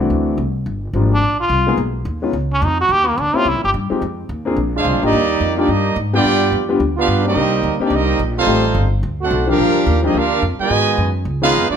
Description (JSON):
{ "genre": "jazz, big band swing", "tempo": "216 BPM", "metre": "4/4", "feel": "swing 60% on 8ths", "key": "unclear", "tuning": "A4 = 440 Hz", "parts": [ { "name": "warm grand piano", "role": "accompaniment", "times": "0.0-11.5 s", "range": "Eb3 to Ab4", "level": "-20 LUFS", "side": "left 4 dB", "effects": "none" }, { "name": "upright bass", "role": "bass", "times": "0.0-11.7 s", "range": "G1 to Ab2", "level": "-20 LUFS", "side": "equal", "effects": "none" }, { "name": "trombone with metal mute", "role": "melody", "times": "1.1-3.7 s", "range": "Bb3 to G4", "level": "-16 LUFS", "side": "equal", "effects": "plate reverb" }, { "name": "clear trumpet section", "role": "melody", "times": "4.8-11.8 s", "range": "Bb3 to Ab5", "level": "-18 LUFS", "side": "right 3 dB", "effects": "plate reverb" }, { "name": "clear trombone section", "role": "second line", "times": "4.8-11.8 s", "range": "Cb3 to G4", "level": "-20 LUFS", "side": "right 4 dB", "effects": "none" } ], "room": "moderate large studio reverb, RT60 0.9 s", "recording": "none", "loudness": "-14 LUFS", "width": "side -8 dB against mid", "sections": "0.0-5.1 A section; 5.1-11.8 B section", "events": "trombone solo 0.0-5.1", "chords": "0.0 D7; 0.7 Gm7; 1.8 Abm; 2.3 Db; 2.9 Ebmaj7; 3.5 C5; 4.0 Fm7; 4.6 Bb9; 5.1 Ebmaj7; 6.2 G7; 7.4 Cm7; 8.5 Am7b5; 9.0 D7; 9.6 Gm7; 10.7 Abm7; 11.3 Db9", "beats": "0.11 0.39 | 0.67 0.95 1.23 1.51 | 1.78 2.06 2.34 2.62 | 2.90 3.18 3.46 3.74 | 4.02 4.30 4.58 4.86 | 5.13 5.41 5.69 5.97 | 6.25 6.53 6.81 7.08 | 7.36 7.64 7.92 8.20 | 8.47 8.75 9.03 9.31 | 9.59 9.86 10.14 10.42 | 10.70 10.98 11.25 11.53" }